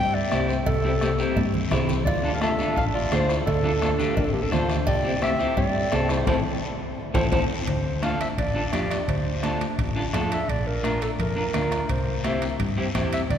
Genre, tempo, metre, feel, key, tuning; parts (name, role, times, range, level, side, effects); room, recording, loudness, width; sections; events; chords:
latin, cumbia; 171 BPM; 4/4; straight; D minor; A4 = 440 Hz
dark clarinet; melody; 0.0-13.4 s; G4 to G5; -28 LUFS; equal
hollow-body short-scale fingered electric bass; bass; 0.0-13.4 s; A1 to G2; -28 LUFS; equal
electric guitar at the edge of break-up; accompaniment; 0.3-13.2 s; C4 to C5; -28 LUFS; left 1 dB
bombo; percussion; 0.3-13.4 s; -30 LUFS; left 1 dB
congas; percussion; 0.3-13.1 s; -33 LUFS; right 2 dB
guiro; percussion; 0.3-13.4 s; -38 LUFS; left 4 dB
cowbell and timbales; percussion; 0.7-13.4 s; -35 LUFS; right 4 dB
clean electric guitar; second line; 1.7-7.4 s; A3 to A4; -33 LUFS; left 2 dB; spring reverb
wet cathedral reverb, RT60 4.7 s; recorded in a church or concert hall; -22 LUFS; side -9 dB against mid
0.0-7.7 A section; 7.7-13.4 B section
drum fill 1.4-2.1, 6.8-7.7; band accent 6.3-7.7
0.0 C; 2.1 Dm; 4.9 C; 6.3 Am; 7.7 Dm7; 10.5 Bb; 11.9 C